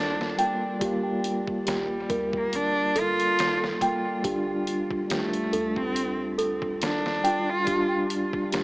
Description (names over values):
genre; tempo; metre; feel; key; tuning
trip hop; 70 BPM; 4/4; swing 55% on 16ths; G minor; A4 = 440 Hz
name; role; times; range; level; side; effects
clear cello; melody; 0.0-8.6 s; G3 to F4; -28 LUFS; equal; vintage 12-bit sampler grit, tape echo
mellow tine electric piano; accompaniment; 0.0-8.6 s; G3 to F4; -30 LUFS; equal; slow stereo tremolo, vintage 12-bit sampler grit, tape echo
celesta; arpeggios; 0.0-8.6 s; G4 to G5; -29 LUFS; right 1 dB; tape echo
soft 808-style bass; bass; 0.0-8.6 s; G1 to D2; -48 LUFS; equal; none
trip hop sampler-style drum kit; drums; 0.2-8.6 s; hi-hat, kick drum, snare drum; -33 LUFS; equal; studio reverb, analog delay
room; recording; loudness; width
light reverb, digital ambience; echo-heavy mix, small speaker sound; -24 LUFS; side -23 dB against mid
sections
0.0-8.6 A section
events
none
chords
0.0 Gm7; 4.2 Dm/G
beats
| 0.81 1.67 2.52 3.38 | 4.24 5.10 5.95 6.81 | 7.67 8.53